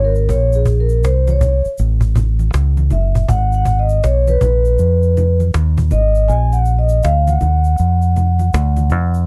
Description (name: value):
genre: hip hop, jazz-hop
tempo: 80 BPM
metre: 4/4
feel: swing 63% on 16ths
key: unclear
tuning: A4 = 437 Hz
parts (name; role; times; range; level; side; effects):
- vibraphone with soft mallets; accompaniment; 0.0-9.1 s; Ab4 to Ab5; -21 LUFS; equal; none
- deep dub fingered electric bass; bass; 0.0-9.3 s; Gb1 to F2; -16 LUFS; equal; none
- cajon; drums; 0.2-9.2 s; none; -22 LUFS; equal; none
- tube shaker and congas; percussion; 0.2-9.3 s; none; -30 LUFS; equal; none
room: little or no reverb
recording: dark, warm production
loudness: -15 LUFS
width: mono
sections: 0.0-9.3 A section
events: vibraphone solo 0.0-9.3; kick muted 6.3-9.3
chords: 0.3 Bbm9; 1.8 A; 3.3 Abm; 6.3 Bb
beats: | 0.29 1.04 1.79 2.54 | 3.29 4.04 4.79 5.54 | 6.29 7.04 7.79 8.54